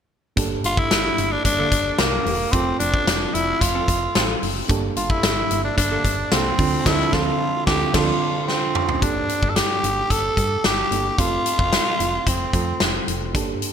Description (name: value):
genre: 1980s-style pop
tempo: 111 BPM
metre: 4/4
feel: straight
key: G dorian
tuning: A4 = 440 Hz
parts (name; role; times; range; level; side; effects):
- mellow FM electric piano; accompaniment; 0.4-13.7 s; G2 to A4; -27 LUFS; right 5 dB; chorus
- solid FM bass; bass; 0.4-13.5 s; E1 to G2; -28 LUFS; equal; none
- big rock drum kit; drums; 0.4-13.7 s; crash cymbal, hi-hat, kick drum, snare drum, toms; -22 LUFS; left 1 dB; gated reverb
- raspy tenor saxophone; melody; 0.7-13.1 s; Bb3 to A4; -22 LUFS; equal; none
- funky polysynth comp; stabs; 1.6-8.1 s; D3 to Bb4; -30 LUFS; equal; chorus
room: moderate lush hall reverb, RT60 2.1 s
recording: bright 1980s-style digital production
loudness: -18 LUFS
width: side -8 dB against mid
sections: 0.4-9.0 A section; 9.0-13.7 B section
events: band accent 6.9-9.0; drum fill 8.5-9.0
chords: 0.4 Gmadd9; 2.5 F; 4.7 Gmadd9; 6.6 Dm7; 9.0 Gmadd9; 11.2 F